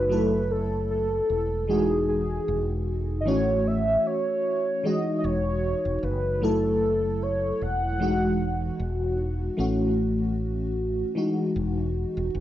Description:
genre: vaporwave.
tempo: 76 BPM.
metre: 4/4.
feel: swing 55% on 16ths.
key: E major.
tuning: A4 = 440 Hz.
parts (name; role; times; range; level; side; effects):
warm velvety synth lead; melody; 0.0-9.2 s; G#4 to F#5; -27 LUFS; equal; chorus, tape echo.
FM electric piano with soft pad layer; accompaniment; 0.0-12.4 s; E3 to A4; -26 LUFS; left 1 dB; tremolo, analog chorus, analog delay.
mellow fretless electric bass; bass; 0.0-12.4 s; E1 to A1; -29 LUFS; equal; analog chorus.
room: wet studio reverb, RT60 0.7 s.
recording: rough home demo mix, cassette tape.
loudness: -23 LUFS.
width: side -13 dB against mid.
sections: 0.0-9.6 A section; 9.6-12.4 B section.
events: none.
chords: 0.1 F#m7; 1.7 Emaj9; 3.3 A6; 4.8 Emaj9; 6.4 F#m7; 8.0 Emaj9; 9.6 A6; 11.2 Emaj9.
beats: | 0.11 0.90 1.69 2.48 | 3.27 4.06 4.85 5.64 | 6.43 7.22 8.01 8.80 | 9.59 10.38 11.16 11.96.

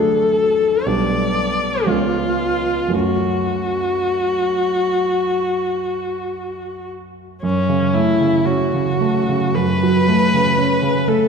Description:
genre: classical, romantic duo for viola and grand piano.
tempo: 52-60 BPM.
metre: 4/4.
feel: rubato.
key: F# minor.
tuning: A4 = 440 Hz.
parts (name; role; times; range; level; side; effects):
clear viola; melody; 0.0-11.3 s; C#4 to D5; -18 LUFS; left 2 dB; none.
clear concert grand piano; accompaniment; 0.0-11.3 s; B1 to D4; -19 LUFS; right 2 dB; none.
room: wet concert hall reverb, RT60 2.4 s.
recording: heard from further back in the room.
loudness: -16 LUFS.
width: side -6 dB against mid.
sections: 0.0-7.4 A section; 7.4-11.3 A section.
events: none.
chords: 0.0 D; 0.9 G/B; 1.9 C#7; 2.9 F#m.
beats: 0.85 1.86 | 2.94 4.07 5.20 6.32 | 7.43 8.46 9.55 10.58.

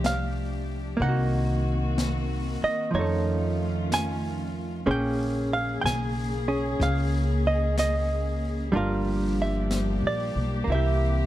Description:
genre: jazz ballad.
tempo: 62 BPM.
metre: 4/4.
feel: swing 67% on 8ths.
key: unclear.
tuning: A4 = 440 Hz.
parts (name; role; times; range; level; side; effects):
hollow-body jazz guitar; accompaniment; 0.0-11.3 s; F3 to G#5; -27 LUFS; right 2 dB; none.
dark studio cello section; sustained chords; 0.0-11.3 s; Db3 to Ab4; -32 LUFS; left 1 dB; none.
upright bass; bass; 0.0-11.3 s; G1 to F2; -27 LUFS; equal; none.
jazz brush drum kit; drums; 0.0-11.3 s; brushed snare drum, hi-hat, snare drum; -36 LUFS; left 2 dB; none.
room: light reverb.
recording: dark, warm production.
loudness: -24 LUFS.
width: side -14 dB against mid.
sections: 0.0-11.3 A section.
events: none.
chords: 0.0 Fadd9; 1.0 Cm7b5; 2.9 F7alt; 4.9 Bbm7; 8.7 Gm7; 10.7 C7.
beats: 0.05 | 1.02 1.98 2.94 3.91 | 4.87 5.84 6.80 7.77 | 8.73 9.70 10.66.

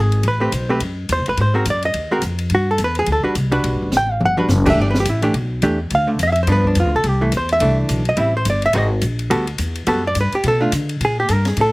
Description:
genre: jazz, small-group swing and bop.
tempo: 212 BPM.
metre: 4/4.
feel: swing 60% on 8ths.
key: G major.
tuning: A4 = 440 Hz.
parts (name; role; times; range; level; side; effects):
hollow-body jazz guitar; accompaniment; 0.0-11.7 s; D3 to G5; -18 LUFS; right 1 dB; none.
upright bass; bass; 0.0-11.7 s; F#1 to D3; -19 LUFS; equal; none.
open jazz drum kit; drums; 0.1-11.7 s; crash cymbal, hi-hat, kick drum, ride cymbal, snare drum, toms; -27 LUFS; left 1 dB; none.
room: little or no reverb.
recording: recorded outdoors, with no room sound.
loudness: -15 LUFS.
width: side -23 dB against mid.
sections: 0.0-4.8 A section; 4.8-11.7 A section.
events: drum fill 3.9-4.5.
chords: 0.2 Am9; 1.4 Ab9; 2.5 Gmaj7; 4.8 Em7; 5.9 Dm; 6.5 G7; 7.0 C69; 8.2 Am7; 8.7 G#9; 9.3 Gmaj9; 10.4 Bm7b5; 11.0 Gm.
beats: | 0.24 0.53 0.81 1.09 | 1.37 1.66 1.94 2.22 | 2.51 2.79 3.07 3.36 | 3.64 3.92 4.21 4.49 | 4.77 5.06 5.34 5.62 | 5.91 6.19 6.47 6.76 | 7.04 7.32 7.61 7.89 | 8.17 8.46 8.74 9.02 | 9.31 9.59 9.87 10.16 | 10.44 10.72 11.01 11.29 | 11.57.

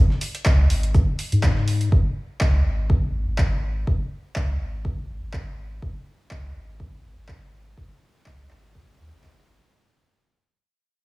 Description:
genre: deep house.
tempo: 123 BPM.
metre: 4/4.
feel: swing 54% on 16ths.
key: unclear.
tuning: A4 = 440 Hz.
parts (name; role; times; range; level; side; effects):
warm sub bass; bass; 0.0-9.6 s; G#1 to G#2; -22 LUFS; equal; sidechain pumping.
dusty soul sampler-style drum kit; drums; 0.1-1.8 s; hi-hat, shaker, snare drum; -38 LUFS; right 2 dB; high-pass filter on perc, high-pass filter on snare, high-pass filter on hats.
punchy analog drum machine; drums; 0.2-9.3 s; handclaps, hi-hat; -30 LUFS; equal; overdrive.
electronic kick drum; drums; 0.5-9.3 s; none; -20 LUFS; equal; none.
room: little or no reverb.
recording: small room ambience.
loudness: -20 LUFS.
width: side -22 dB against mid.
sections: 0.0-9.7 A section.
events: fade-out 0.0-9.7.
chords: none.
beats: 0.46 0.95 1.43 | 1.92 2.41 2.90 3.38 | 3.87 4.36 4.85 5.34 | 5.82 6.31 6.80 7.29 | 7.78 8.26 8.75 9.24.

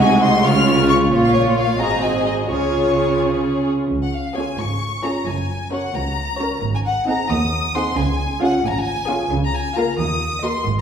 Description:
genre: quick classical-period movement for string orchestra.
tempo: 89 BPM (dotted quarters).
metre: 6/8.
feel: rubato.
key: Db major.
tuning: A4 = 440 Hz.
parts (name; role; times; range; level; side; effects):
clear chamber violin section; melody; 0.0-10.8 s; Db5 to F6; -23 LUFS; left 4 dB; none.
rich chamber violin section; second line; 0.0-10.6 s; F4 to Gb5; -23 LUFS; left 1 dB; none.
dark chamber viola section; accompaniment; 0.0-10.6 s; Ab3 to Gb4; -22 LUFS; right 2 dB; none.
clear chamber double bass section; bass; 0.0-10.8 s; Gb1 to Eb2; -25 LUFS; right 2 dB; none.
clear symphonic cello section; bass; 0.0-10.8 s; Db2 to Eb3; -24 LUFS; right 2 dB; none.
room: wet recital hall reverb, RT60 1.6 s.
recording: heard from further back in the room.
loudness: -17 LUFS.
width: side -8 dB against mid.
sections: 0.0-3.9 A section; 3.9-10.8 A section.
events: none.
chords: 0.4 Db; 1.1 Bbm; 1.8 Ab7; 2.5 Db; 5.3 Gb; 6.6 Ab7; 8.0 Db; 9.3 Bbm/Db; 10.0 Ebm.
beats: 0.44 | 1.11 1.79 | 2.49 3.20 | 3.90 4.59 | 5.27 5.95 | 6.62 7.29 | 7.97 8.64 | 9.31 9.98 | 10.65.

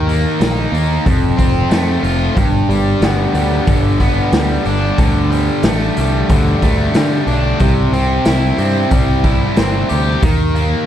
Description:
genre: classic rock.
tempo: 92 BPM.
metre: 4/4.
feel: straight.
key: G major.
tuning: A4 = 440 Hz.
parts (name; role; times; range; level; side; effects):
distorted electric guitar; riff; 0.0-10.9 s; F2 to G4; -16 LUFS; equal; overdrive.
overdriven picked electric bass; bass; 0.0-10.7 s; F1 to D3; -17 LUFS; equal; none.
raw garage drum kit; drums; 0.1-10.7 s; hi-hat, kick drum, snare drum; -17 LUFS; equal; none.
room: little or no reverb.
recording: none.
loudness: -12 LUFS.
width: side -10 dB against mid.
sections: 0.0-10.9 A section.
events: none.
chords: 0.0 Eb5; 1.0 F; 2.4 G; 5.0 Dsus4; 7.6 C; 10.2 Eb5.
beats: 0.40 1.05 1.70 | 2.36 3.01 3.67 4.32 | 4.98 5.63 6.29 6.95 | 7.60 8.26 8.91 9.57 | 10.23.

